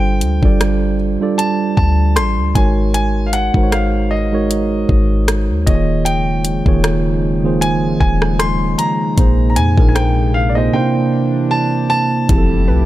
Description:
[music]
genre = contemporary R&B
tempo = 77 BPM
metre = 4/4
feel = swing 54% on 16ths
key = unclear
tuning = A4 = 440 Hz
[part]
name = warm concert grand piano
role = melody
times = 0.0-12.9 s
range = D5 to C6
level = -21 LUFS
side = left 1 dB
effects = digital delay
[part]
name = mellow tine electric piano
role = accompaniment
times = 0.0-12.9 s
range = Bb2 to D5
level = -17 LUFS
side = right 3 dB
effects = none
[part]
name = clean 808-style bass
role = bass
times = 0.0-12.9 s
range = Eb1 to F2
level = -17 LUFS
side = equal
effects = none
[part]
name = smooth R&B drum kit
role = drums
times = 0.2-12.5 s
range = hi-hat, kick drum, rim click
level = -17 LUFS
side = left 1 dB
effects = none
[part]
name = warm analog pad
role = sustained chords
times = 6.1-12.9 s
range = C3 to G4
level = -23 LUFS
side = left 2 dB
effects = chorus
[part]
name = soft round pluck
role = texture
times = 6.1-12.9 s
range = B4 to G5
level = -33 LUFS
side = equal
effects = none
[part]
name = impact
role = sound effects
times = 12.3-12.9 s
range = none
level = -21 LUFS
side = left 4 dB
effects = none
[sound]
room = little or no reverb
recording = none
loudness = -13 LUFS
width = side -15 dB against mid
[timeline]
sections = 0.0-12.3 A section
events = break 10.7-12.3; impact 12.3-12.9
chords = 0.0 G9sus4; 2.6 Ab9sus4; 5.7 Eb9sus4; 9.2 Bb9sus4; 10.7 C9; 12.3 Fmaj9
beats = 0.60 1.38 2.16 | 2.94 3.72 4.50 5.28 | 6.06 6.84 7.62 8.40 | 9.18 9.96 10.73 11.51 | 12.29

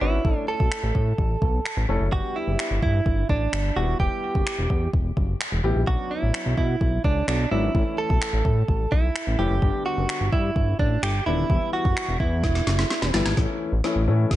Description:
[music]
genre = dance-pop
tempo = 128 BPM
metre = 4/4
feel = straight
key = unclear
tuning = A4 = 441 Hz
[part]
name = direct-recorded clean electric guitar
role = melody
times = 0.0-13.1 s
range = D4 to A4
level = -27 LUFS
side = right 4 dB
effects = ping-pong delay
[part]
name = warm baby grand piano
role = accompaniment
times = 0.0-14.4 s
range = D3 to B4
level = -29 LUFS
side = left 4 dB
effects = sidechain pumping
[part]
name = chorused synth bass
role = bass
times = 0.0-14.4 s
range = D#1 to B2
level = -24 LUFS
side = equal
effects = sidechain pumping
[part]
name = smooth R&B drum kit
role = drums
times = 0.2-14.4 s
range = finger snaps, kick drum, snare drum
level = -25 LUFS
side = equal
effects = none
[sound]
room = little or no reverb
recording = nothing above 10.9 kHz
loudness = -21 LUFS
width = side -14 dB against mid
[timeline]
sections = 0.0-13.4 A section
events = drum fill 12.4-13.4, 13.4-14.4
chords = 0.2 A; 2.1 G; 4.0 Em; 5.9 Bmadd9; 7.7 A; 9.6 G; 11.5 Em; 13.4 A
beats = | 0.25 0.72 1.19 1.65 | 2.12 2.59 3.06 3.53 | 4.00 4.47 4.94 5.40 | 5.87 6.34 6.81 7.28 | 7.75 8.22 8.69 9.15 | 9.62 10.09 10.56 11.03 | 11.50 11.97 12.44 12.90 | 13.37 13.84 14.31

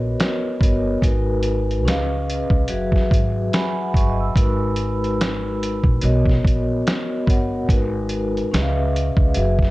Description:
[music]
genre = lo-fi hip hop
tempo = 72 BPM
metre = 4/4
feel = swing 60% on 16ths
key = G# minor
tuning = A4 = 440 Hz
[part]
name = vibraphone with soft mallets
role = accompaniment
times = 0.0-9.7 s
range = F#3 to E6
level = -22 LUFS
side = left 1 dB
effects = cassette tape
[part]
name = upright bass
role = bass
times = 0.0-9.7 s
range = F#1 to C#2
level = -23 LUFS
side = equal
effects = none
[part]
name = lo-fi sampler-style drum kit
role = drums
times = 0.2-9.7 s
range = hi-hat, kick drum, snare drum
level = -19 LUFS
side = equal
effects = none
[sound]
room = light reverb, studio reverb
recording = cassette tape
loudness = -17 LUFS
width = side -18 dB against mid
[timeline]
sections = 0.0-9.7 A section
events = vibraphone fill 3.1-4.4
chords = 0.0 Bmaj9; 1.0 G#m7; 1.9 C#7; 2.7 F#7sus4; 4.4 G#m7; 6.0 Bmaj9; 7.7 G#m7; 8.5 C#7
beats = 0.19 | 1.02 1.86 2.69 3.52 | 4.36 5.19 6.02 6.86 | 7.69 8.52 9.36

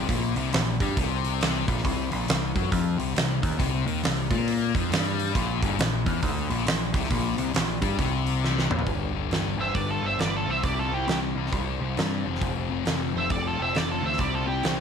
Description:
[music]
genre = blues rock power trio and southern rock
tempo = 136 BPM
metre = 4/4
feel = swing 62% on 8ths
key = C mixolydian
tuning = A4 = 440 Hz
[part]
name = thick fuzz guitar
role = riff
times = 0.0-14.8 s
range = F2 to C4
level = -29 LUFS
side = left 11 dB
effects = distortion
[part]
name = growling picked electric bass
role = bass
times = 0.0-14.8 s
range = F1 to Bb2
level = -29 LUFS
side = right 2 dB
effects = overdrive
[part]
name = huge arena drum kit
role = drums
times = 0.1-14.8 s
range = hi-hat, kick drum, snare drum, toms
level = -28 LUFS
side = right 2 dB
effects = none
[part]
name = octave-fuzz lead guitar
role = melody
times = 9.6-14.7 s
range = G4 to E5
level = -28 LUFS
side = right 1 dB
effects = distortion, slapback echo
[part]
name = dark smooth lead guitar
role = second line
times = 9.6-14.7 s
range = E4 to C5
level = -35 LUFS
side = right 12 dB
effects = overdrive
[sound]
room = light reverb, small room ambience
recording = 1960s-style stereo with parts hard left and right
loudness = -23 LUFS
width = side -7 dB against mid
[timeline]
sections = 0.0-8.9 A section; 8.9-14.8 B section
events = drum fill 8.4-8.9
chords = 0.0 Gmadd11; 1.8 C5; 5.3 Gmadd11; 8.9 G5; 10.4 C5; 12.2 F5; 14.2 C5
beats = | 0.09 0.53 0.96 1.40 | 1.84 2.28 2.72 3.16 | 3.59 4.03 4.47 4.91 | 5.35 5.79 6.23 6.67 | 7.11 7.55 7.99 8.43 | 8.87 9.31 9.76 10.20 | 10.64 11.09 11.53 11.97 | 12.42 12.86 13.30 13.75 | 14.19 14.63

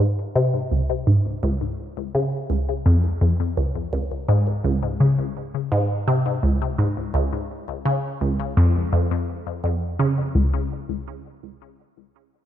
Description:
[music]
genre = ambient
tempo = 84 BPM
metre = 4/4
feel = straight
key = Db major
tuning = A4 = 439 Hz
[part]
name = resonant blip pluck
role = riff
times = 0.0-10.7 s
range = Db2 to Db3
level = -20 LUFS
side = equal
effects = phaser, ping-pong delay
[sound]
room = light reverb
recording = none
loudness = -20 LUFS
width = side -11 dB against mid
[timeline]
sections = 0.0-10.4 A section; 10.4-12.5 B section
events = none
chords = none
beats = 0.35 1.07 | 1.78 2.50 3.21 3.93 | 4.64 5.35 6.07 6.78 | 7.50 8.21 8.93 9.64 | 10.35

